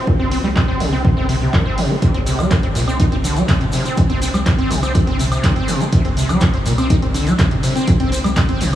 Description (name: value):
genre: acid house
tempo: 123 BPM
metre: 4/4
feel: straight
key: C minor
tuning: A4 = 440 Hz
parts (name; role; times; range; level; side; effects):
- overdriven acid bass; riff; 0.0-8.7 s; Bb2 to Eb4; -18 LUFS; equal; distortion, analog chorus, sidechain pumping, analog delay
- warm sub bass; bass; 0.1-8.8 s; G1 to C2; -22 LUFS; equal; sidechain pumping
- electronic kick drum; drums; 0.1-8.5 s; none; -17 LUFS; equal; none
- punchy analog drum machine; drums; 0.3-8.8 s; handclaps, hi-hat, woodblock; -26 LUFS; right 1 dB; none
- shekere; percussion; 2.0-8.7 s; none; -31 LUFS; left 2 dB; none
room: moderate huge ambient reverb, RT60 8.5 s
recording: dreamy mix soaked in reverb, small room ambience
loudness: -14 LUFS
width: side -12 dB against mid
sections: 0.0-8.8 A section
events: none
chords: none